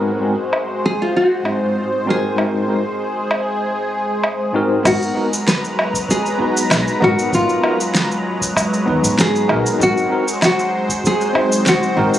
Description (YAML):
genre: sunset chillout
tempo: 97 BPM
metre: 4/4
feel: straight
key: unclear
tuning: A4 = 441 Hz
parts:
  - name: tine electric piano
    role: accompaniment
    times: 0.0-12.2 s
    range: G#2 to B#4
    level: -21 LUFS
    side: left 1 dB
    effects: overdrive, fast stereo tremolo, auto-pan, ping-pong delay
  - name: lush unison pad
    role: sustained chords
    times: 0.0-12.2 s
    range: F#3 to A#5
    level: -21 LUFS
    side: equal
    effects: chorus, phaser
  - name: deep house drum kit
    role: drums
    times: 0.5-12.2 s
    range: cabasa, crash cymbal, snare drum, woodblock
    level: -20 LUFS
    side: equal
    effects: overdrive, studio reverb
  - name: nylon-string guitar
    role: melody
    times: 0.9-12.2 s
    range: E#4 to B4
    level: -19 LUFS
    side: equal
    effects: tape echo
  - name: upright bass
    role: bass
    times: 4.9-12.1 s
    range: G#1 to G#2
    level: -22 LUFS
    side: equal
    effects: tube saturation
  - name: electronic kick drum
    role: drums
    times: 4.9-11.5 s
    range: none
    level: -34 LUFS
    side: equal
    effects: overdrive, studio reverb
room: moderate plate reverb, RT60 3.3 s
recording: recorded on a phone in the room, studio ambience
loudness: -15 LUFS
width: side -12 dB against mid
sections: 0.0-4.9 A section; 4.9-12.2 B section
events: none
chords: 0.0 G#7; 4.9 G#m9; 9.8 G#7